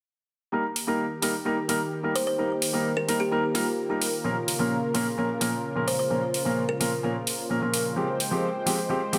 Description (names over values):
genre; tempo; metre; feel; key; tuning
EDM, festival progressive house; 129 BPM; 4/4; straight; unclear; A4 = 441 Hz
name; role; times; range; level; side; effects
warm concert grand piano; accompaniment; 0.5-9.2 s; Bb2 to Bb4; -30 LUFS; equal; delay
lush unison pad; sustained chords; 0.5-9.2 s; Db3 to G5; -34 LUFS; equal; chorus
electronic hi-hat; drums; 0.8-9.2 s; none; -32 LUFS; equal; overdrive, studio reverb
kalimba; melody; 2.2-6.8 s; F4 to C5; -33 LUFS; equal; digital delay
room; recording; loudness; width
light reverb, studio ambience; none; -27 LUFS; mono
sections
0.5-9.2 A section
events
none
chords
0.5 Eb; 4.2 Bbm; 8.0 Fmadd9